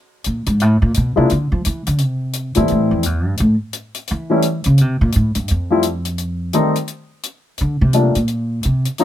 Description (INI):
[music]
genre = jazz piano trio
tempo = 172 BPM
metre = 4/4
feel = swing 63% on 8ths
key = unclear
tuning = A4 = 438 Hz
[part]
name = hi-hat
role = drums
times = 0.2-9.0 s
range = none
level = -26 LUFS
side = left 5 dB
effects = none
[part]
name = upright bass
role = bass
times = 0.3-8.9 s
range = E2 to F3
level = -16 LUFS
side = equal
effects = none
[part]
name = warm baby grand piano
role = melody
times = 1.2-9.0 s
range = Eb3 to E4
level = -16 LUFS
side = left 2 dB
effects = none
[sound]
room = little or no reverb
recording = close, detailed microphones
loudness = -15 LUFS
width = side -12 dB against mid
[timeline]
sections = 0.0-7.6 A section; 7.6-9.0 A section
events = upright bass solo 0.0-9.0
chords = 0.0 G#sus2; 0.6 B7(no3); 1.3 Dmadd9; 2.0 Am7; 3.4 N.C.; 4.8 F; 6.2 Am7b5; 6.9 N.C.; 7.6 Gm (rootless)